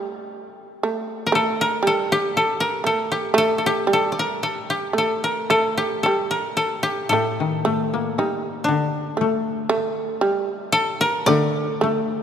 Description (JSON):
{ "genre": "japanese traditional, Japanese chamber music", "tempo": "54-60 BPM", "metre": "2/4", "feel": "rubato", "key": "unclear", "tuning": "A4 = 445 Hz", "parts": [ { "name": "koto", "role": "melody", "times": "0.0-12.2 s", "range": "D4 to D5", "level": "-21 LUFS", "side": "left 1 dB", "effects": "none" }, { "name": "shamisen", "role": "second line", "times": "0.0-12.2 s", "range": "G3 to A3", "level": "-24 LUFS", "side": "right 3 dB", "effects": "none" }, { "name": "koto", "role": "accompaniment", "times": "0.0-1.8, 7.1-12.2 s", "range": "A2 to Eb4", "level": "-23 LUFS", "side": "left 5 dB", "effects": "none" } ], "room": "wet church reverb, RT60 3.3 s", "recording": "none", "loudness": "-19 LUFS", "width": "side -8 dB against mid", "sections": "0.0-12.2 A section", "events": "none", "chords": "none" }